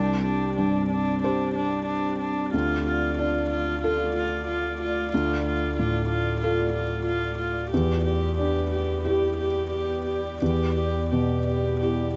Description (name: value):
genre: neoclassical piano and strings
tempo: 92 BPM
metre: 4/4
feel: rubato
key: unclear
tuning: A4 = 439 Hz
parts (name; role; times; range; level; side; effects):
- felt-muted upright piano; accompaniment; 0.0-12.2 s; C2 to C5; -28 LUFS; equal; none
- warm viola; accompaniment; 0.0-12.1 s; D4 to G4; -30 LUFS; equal; none
- glassy FM pad; sustained chords; 0.0-12.2 s; A3 to D5; -35 LUFS; equal; ensemble chorus, built-in reverb
room: light reverb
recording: dark, warm production, nothing above 7.9 kHz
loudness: -25 LUFS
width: mono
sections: 0.0-12.2 A section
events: none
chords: 0.0 Csus2; 2.5 Dm; 7.7 Em7